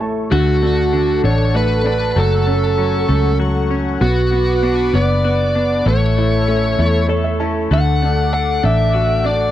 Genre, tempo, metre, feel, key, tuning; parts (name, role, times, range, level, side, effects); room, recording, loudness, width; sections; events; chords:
six-eight pop ballad; 65 BPM (dotted quarters); 6/8; straight; D major; A4 = 439 Hz
clear concert grand piano; accompaniment; 0.0-9.5 s; D3 to A5; -22 LUFS; right 1 dB
warm analog pad; sustained chords; 0.0-9.5 s; A4 to D6; -24 LUFS; left 2 dB; chorus
vintage muted fingered electric bass; bass; 0.0-9.5 s; F#1 to E2; -17 LUFS; equal
bluesy overdriven lead guitar; melody; 0.3-9.5 s; F#4 to F#5; -18 LUFS; right 1 dB; distortion
twelve-string electric guitar; arpeggios; 0.3-9.5 s; E3 to A4; -26 LUFS; left 13 dB
light reverb; dry, close 1970s-style studio recording; -13 LUFS; side -12 dB against mid
0.3-9.5 A section
grand piano fill 0.0-0.3, 6.8-7.7
0.3 D; 2.2 F#m; 4.0 Bm; 5.9 A; 7.7 D